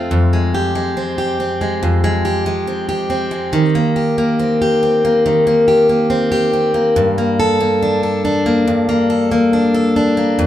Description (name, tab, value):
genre	pop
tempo	70 BPM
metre	4/4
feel	straight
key	unclear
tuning	A4 = 440 Hz
part	picked plugged-in steel-string acoustic guitar	solo	0.0-10.5 s	F2 to A4	-13 LUFS	equal	none
room	wet studio reverb, RT60 0.7 s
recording	band playing live in one room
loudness	-13 LUFS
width	side -12 dB against mid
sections	0.1-10.5 A section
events	none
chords	0.1 Fmadd9; 3.5 Eb6; 7.0 Gmadd9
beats	| 0.11 0.97 1.82 2.68 | 3.54 4.40 5.25 6.11 | 6.97 7.83 8.68 9.54 | 10.40